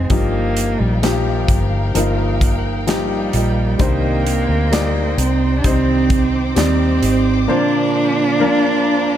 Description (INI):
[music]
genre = pop ballad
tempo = 65 BPM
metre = 4/4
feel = straight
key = Eb major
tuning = A4 = 440 Hz
[part]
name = dark cello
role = melody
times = 0.0-9.2 s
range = F3 to D4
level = -19 LUFS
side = right 3 dB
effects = none
[part]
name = warm concert grand piano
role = accompaniment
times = 0.0-9.2 s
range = G2 to D5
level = -22 LUFS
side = left 6 dB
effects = none
[part]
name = dark studio string section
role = sustained chords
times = 0.0-9.2 s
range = Eb4 to D6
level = -27 LUFS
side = left 4 dB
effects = none
[part]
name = fingerpicked steel-string acoustic guitar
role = arpeggios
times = 0.0-9.2 s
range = Bb2 to Ab4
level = -24 LUFS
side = right 7 dB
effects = none
[part]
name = vintage muted fingered electric bass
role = bass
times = 0.0-7.5 s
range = G1 to Eb2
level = -19 LUFS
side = equal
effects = none
[part]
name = modern studio drum kit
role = drums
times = 0.1-7.2 s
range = hi-hat, kick drum, snare drum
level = -20 LUFS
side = equal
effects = none
[sound]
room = light reverb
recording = none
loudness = -14 LUFS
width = side -10 dB against mid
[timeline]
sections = 0.0-9.2 A section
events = none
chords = 0.1 Ebadd9/G; 3.8 Cm; 7.5 Bbadd9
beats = | 0.10 1.03 1.95 2.87 | 3.80 4.72 5.64 6.57 | 7.49 8.41